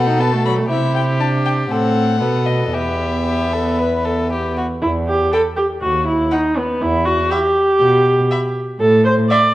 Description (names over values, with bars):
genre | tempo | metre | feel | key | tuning
quick classical-period movement for string quartet | 120 BPM | 4/4 | rubato | E minor | A4 = 442 Hz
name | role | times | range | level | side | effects
rich violin | melody | 0.0-9.4 s | D#5 to C6 | -24 LUFS | left 6 dB | none
rich violin | second line | 0.0-9.4 s | F#4 to G5 | -24 LUFS | left 2 dB | none
rich viola | accompaniment | 0.0-9.5 s | F#3 to D5 | -17 LUFS | right 1 dB | none
dark cello | bass | 0.0-9.2 s | D#2 to C3 | -20 LUFS | right 1 dB | none
room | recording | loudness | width
moderate recital hall reverb, RT60 1.7 s | worn, warbling old tape, cassette tape, warbly pitch drift | -14 LUFS | side -15 dB against mid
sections
0.0-4.8 A section; 4.8-9.5 A section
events
none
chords
0.0 B7; 0.7 C; 1.7 F#dim/A; 2.2 B7; 2.7 Em; 5.8 B/D#; 6.8 Em; 8.8 N.C.